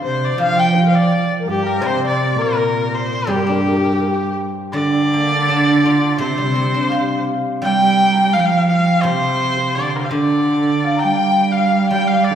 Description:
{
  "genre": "chinese traditional, Chinese chamber ensemble",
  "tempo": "83 BPM",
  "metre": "2/4",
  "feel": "straight",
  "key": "G yu mode",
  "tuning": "A4 = 439 Hz",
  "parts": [
    { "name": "clear erhu", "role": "melody", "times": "0.0-12.3 s", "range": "G4 to G5", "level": "-20 LUFS", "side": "left 1 dB", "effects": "none" },
    { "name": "bright large dizi", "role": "second line", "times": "0.0-4.4, 11.0-12.3 s", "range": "D4 to Bb5", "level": "-22 LUFS", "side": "left 5 dB", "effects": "none" },
    { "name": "hammered dulcimer", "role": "second line", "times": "0.0-12.3 s", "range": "G4 to Bb5", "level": "-23 LUFS", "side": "left 1 dB", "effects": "none" },
    { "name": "rich cello", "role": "second line", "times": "0.0-12.3 s", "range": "G2 to G3", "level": "-19 LUFS", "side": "right 4 dB", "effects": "none" },
    { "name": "guzheng", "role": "accompaniment", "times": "0.0-12.3 s", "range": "C3 to G4", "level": "-21 LUFS", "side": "equal", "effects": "none" }
  ],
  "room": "wet recital hall reverb, RT60 1.8 s",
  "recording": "heard from further back in the room",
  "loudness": "-14 LUFS",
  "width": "side -9 dB against mid",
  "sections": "0.0-4.7 A section; 4.7-12.3 B section",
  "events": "none",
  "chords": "none"
}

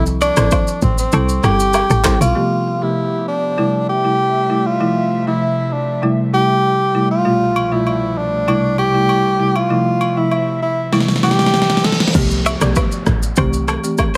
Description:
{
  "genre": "afrobeats",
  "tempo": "98 BPM",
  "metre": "4/4",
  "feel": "straight",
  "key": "unclear",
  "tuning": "A4 = 438 Hz",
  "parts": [
    { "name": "breathy tenor saxophone", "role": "melody", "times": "0.0-12.0 s", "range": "C4 to A4", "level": "-20 LUFS", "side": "equal", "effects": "delay, plate reverb" },
    { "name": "folk marimba with medium mallets", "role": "accompaniment", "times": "0.0-14.0 s", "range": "B2 to A4", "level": "-21 LUFS", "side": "equal", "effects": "plate reverb" },
    { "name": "woody log drum bass", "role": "bass", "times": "0.0-2.3, 12.1-13.8 s", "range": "G1 to C2", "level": "-20 LUFS", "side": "equal", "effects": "none" },
    { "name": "deep house drum kit", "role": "drums", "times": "0.1-2.3, 10.9-14.2 s", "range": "crash cymbal, handclaps, kick drum, rim click, shaker, snare drum", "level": "-20 LUFS", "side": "equal", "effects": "none" },
    { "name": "direct-recorded clean electric guitar", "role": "riff", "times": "0.2-2.2, 12.5-13.8 s", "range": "G4 to E5", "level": "-24 LUFS", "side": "equal", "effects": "harmonic tremolo, delay" },
    { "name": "agogo bells and woodblock", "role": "percussion", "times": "0.2-2.3, 7.6-14.1 s", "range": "none", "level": "-28 LUFS", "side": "equal", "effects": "none" },
    { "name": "airy breathy pad", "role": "sustained chords", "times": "2.4-11.5 s", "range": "C2 to E5", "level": "-27 LUFS", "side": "equal", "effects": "chorus, plate reverb" },
    { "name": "reverse cymbal and downlifter", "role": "sound effects", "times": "11.7-14.2 s", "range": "none", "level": "-30 LUFS", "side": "equal", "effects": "none" }
  ],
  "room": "moderate studio reverb, RT60 0.5 s",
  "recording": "none",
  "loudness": "-16 LUFS",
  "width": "mono",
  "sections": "0.0-2.4 A section; 2.4-12.2 B section; 12.2-14.2 C section",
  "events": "drum fill 10.9-12.2; reverse cymbal 11.7-12.2",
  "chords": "0.0 Fmaj7; 1.1 C6; 2.4 G9/C; 3.6 Am7/C; 4.8 Fmaj7/C; 6.0 C6; 7.3 G9/C; 8.5 Am7/C; 9.7 Fmaj7/C; 10.9 C6; 12.2 G9; 13.4 Am7/C"
}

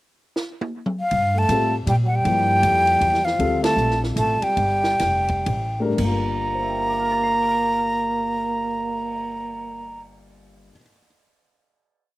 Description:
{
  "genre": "modal jazz",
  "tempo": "111-159 BPM",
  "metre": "3/4",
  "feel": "swing 64% on 8ths",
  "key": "G dorian",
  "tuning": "A4 = 440 Hz",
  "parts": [
    { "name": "compact cocktail drum kit", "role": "drums", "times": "0.4-9.1 s", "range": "crash cymbal, cymbal swell, hi-hat, kick drum, ride cymbal, snare drum, toms", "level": "-31 LUFS", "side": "equal", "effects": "none" },
    { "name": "breathy concert flute", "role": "melody", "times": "1.0-10.0 s", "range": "F5 to Bb5", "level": "-21 LUFS", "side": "equal", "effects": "slapback echo" },
    { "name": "upright bass", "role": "bass", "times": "1.1-10.7 s", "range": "F1 to Bb2", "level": "-25 LUFS", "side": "equal", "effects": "none" },
    { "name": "growling trombone", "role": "second line", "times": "1.3-10.0 s", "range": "F3 to Bb3", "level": "-27 LUFS", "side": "right 4 dB", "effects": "none" },
    { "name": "dark baby grand piano", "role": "accompaniment", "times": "1.5-11.0 s", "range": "G2 to C7", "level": "-28 LUFS", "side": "left 3 dB", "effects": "slapback echo" }
  ],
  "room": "little or no reverb",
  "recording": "recorded outdoors, with no room sound",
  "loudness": "-19 LUFS",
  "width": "side -18 dB against mid",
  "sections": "0.0-1.1 pickup bar; 1.1-6.0 A section; 6.0-9.2 final chord",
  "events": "drum fill 0.4-1.1; slowing down 3.4-6.0; band accent 3.6",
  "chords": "0.0 N.C.; 1.1 Gm9"
}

